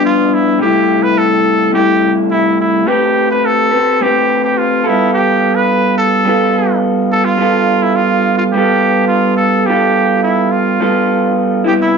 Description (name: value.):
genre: indie pop.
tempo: 106 BPM.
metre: 4/4.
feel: straight.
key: unclear.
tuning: A4 = 440 Hz.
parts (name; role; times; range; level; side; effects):
bright trumpet; melody; 0.0-12.0 s; E4 to B4; -14 LUFS; equal; none.
electric guitar through a small old amp; accompaniment; 0.0-12.0 s; G2 to B4; -12 LUFS; equal; warbly pitch drift.
room: moderate studio ambience, RT60 0.5 s.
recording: band playing live in one room, nothing above 7.5 kHz.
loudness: -10 LUFS.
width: side -5 dB against mid.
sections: 0.0-7.4 A section; 7.4-12.0 B section.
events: none.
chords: 0.0 G7; 0.6 C6; 2.9 Am9; 4.9 G9.